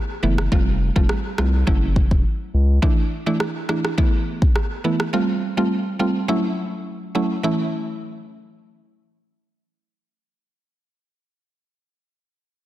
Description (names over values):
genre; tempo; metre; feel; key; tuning
dancehall; 104 BPM; 4/4; straight; A major; A4 = 438 Hz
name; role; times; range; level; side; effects
mallet-like synth pluck; accompaniment; 0.0-11.2 s; E3 to F4; -22 LUFS; right 1 dB; chorus
saturated sub bass; bass; 0.2-2.8 s; E1 to C#2; -19 LUFS; equal; none
afro-pop drum kit; drums; 0.4-5.1 s; kick drum, rim click; -20 LUFS; equal; none
room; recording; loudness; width
light reverb; dense, heavily limited modern master; -18 LUFS; side -14 dB against mid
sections
0.0-7.4 A section; 7.4-9.7 B section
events
none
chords
0.0 Asus2; 0.5 Fadd9; 1.7 F#m7; 2.8 Dsus2; 4.0 Asus2; 5.1 Fadd9; 6.3 F#m7; 7.4 A